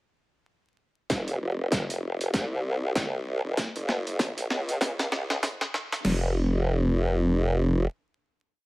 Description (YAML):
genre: glitch hop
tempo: 97 BPM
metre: 4/4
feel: swing 58% on 16ths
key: unclear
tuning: A4 = 439 Hz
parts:
  - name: formant-sweep wobble bass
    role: bass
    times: 1.1-7.9 s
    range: F1 to Db2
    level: -26 LUFS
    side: equal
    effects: chorus, high-pass filter
  - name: boom bap sampler-style drum kit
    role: drums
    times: 1.1-6.0 s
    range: hi-hat, snare drum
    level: -30 LUFS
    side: equal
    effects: overdrive, high-pass filter on snare, high-pass filter on hats
  - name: dubstep drum kit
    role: drums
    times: 1.1-6.2 s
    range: crash cymbal, kick drum, snare drum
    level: -30 LUFS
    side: equal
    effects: distortion, high-pass filter on kick, high-pass filter on snare, high-pass filter on cymbals
room: digital ambience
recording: vinyl crackle, high-pass filter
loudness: -25 LUFS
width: side -21 dB against mid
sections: 1.1-6.0 build; 6.0-8.5 final note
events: build-up 1.1-6.0; drum fill 1.1-6.0; filter sweep 1.1-6.0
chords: none